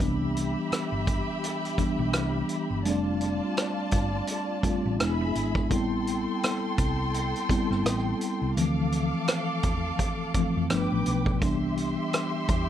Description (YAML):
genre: lush 1970s-style soul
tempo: 84 BPM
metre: 4/4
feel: swing 58% on 16ths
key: C major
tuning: A4 = 440 Hz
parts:
  - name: warm studio string section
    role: second line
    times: 0.0-12.7 s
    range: F4 to D6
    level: -33 LUFS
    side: equal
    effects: none
  - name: mellow tine electric piano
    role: accompaniment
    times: 0.0-12.7 s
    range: E3 to F4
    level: -28 LUFS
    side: left 1 dB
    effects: fast stereo tremolo
  - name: hollow-body short-scale fingered electric bass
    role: bass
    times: 0.0-12.7 s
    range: E1 to F2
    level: -30 LUFS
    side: right 1 dB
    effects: none
  - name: vintage drum kit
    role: drums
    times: 0.0-12.7 s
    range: hi-hat, kick drum, rim click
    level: -29 LUFS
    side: right 1 dB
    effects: none
room: light reverb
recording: dark, warm production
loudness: -25 LUFS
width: side -10 dB against mid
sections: 0.0-12.7 A section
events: none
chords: 0.0 Cmaj7; 2.9 F6; 5.0 E7; 5.7 Am7; 8.6 Dm7; 10.7 G7; 11.4 Cmaj7